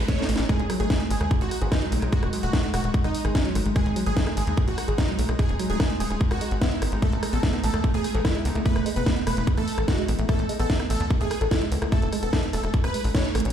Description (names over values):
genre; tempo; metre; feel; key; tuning
psychedelic trance; 147 BPM; 4/4; straight; G# phrygian; A4 = 440 Hz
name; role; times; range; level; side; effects
pulsing gated texture; sustained chords; 0.0-13.5 s; G#3 to D#4; -33 LUFS; equal; chorus, built-in reverb, sidechain pumping
woody wave-folded pluck; riff; 0.0-13.5 s; F#3 to A4; -30 LUFS; moving between left 3 dB and right 3 dB; chorus, auto-pan, sidechain pumping, ping-pong delay
tight sequencer bass; bass; 0.0-13.5 s; D#1 to E2; -26 LUFS; equal; none
noise sweep; sound effects; 0.0-0.5 s; none; -41 LUFS; right 6 dB; none
supersaw stab; melody; 0.1-13.3 s; C#4 to C#5; -32 LUFS; right 2 dB; phaser, sidechain pumping, ping-pong delay
electronic kick drum; drums; 0.1-13.2 s; none; -23 LUFS; equal; none
garage drum kit; drums; 0.1-13.5 s; hi-hat, rim click, snare drum; -31 LUFS; equal; none
vowel-sweep wobble bass; second line; 1.6-2.2, 8.1-8.6 s; F#3 to B3; -41 LUFS; right 4 dB; none
room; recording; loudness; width
little or no reverb; played on a big sound system in a bare room, large studio reverb; -22 LUFS; side -9 dB against mid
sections
0.0-13.5 A section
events
noise sweep 0.0-0.5; drum fill 0.1-0.5, 13.3; band accent 13.1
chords
0.5 G#5; 7.0 A5